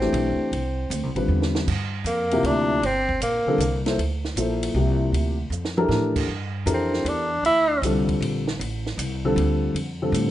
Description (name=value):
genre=modal jazz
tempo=156 BPM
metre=3/4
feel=swing 66% on 8ths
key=G dorian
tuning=A4 = 441 Hz
part: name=warm tenor saxophone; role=melody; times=0.0-3.8, 6.7-7.8 s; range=Bb3 to E4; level=-23 LUFS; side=right 1 dB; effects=plate reverb
part: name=dark upright piano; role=accompaniment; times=0.0-10.3 s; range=C3 to C5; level=-24 LUFS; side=left 2 dB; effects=none
part: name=upright bass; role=bass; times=0.0-10.3 s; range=G1 to A2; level=-26 LUFS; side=equal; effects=none
part: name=compact cocktail drum kit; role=drums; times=0.0-10.3 s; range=crash cymbal, hi-hat, kick drum, ride cymbal, snare drum, toms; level=-32 LUFS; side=right 2 dB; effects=none
room=moderate studio reverb, RT60 0.8 s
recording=nothing above 10.6 kHz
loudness=-21 LUFS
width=side -13 dB against mid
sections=0.0-1.7 A section; 1.7-10.3 B section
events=drum fill 1.3-1.7, 5.5-5.9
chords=0.0 Am; 1.7 Gm9; 6.3 Dmadd9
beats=0.13 | 0.51 0.90 1.28 | 1.67 2.06 2.44 | 2.83 3.21 3.60 | 3.98 4.37 4.75 | 5.13 5.52 5.90 | 6.29 6.67 7.06 | 7.44 7.83 8.21 | 8.60 8.98 9.37 | 9.75 10.14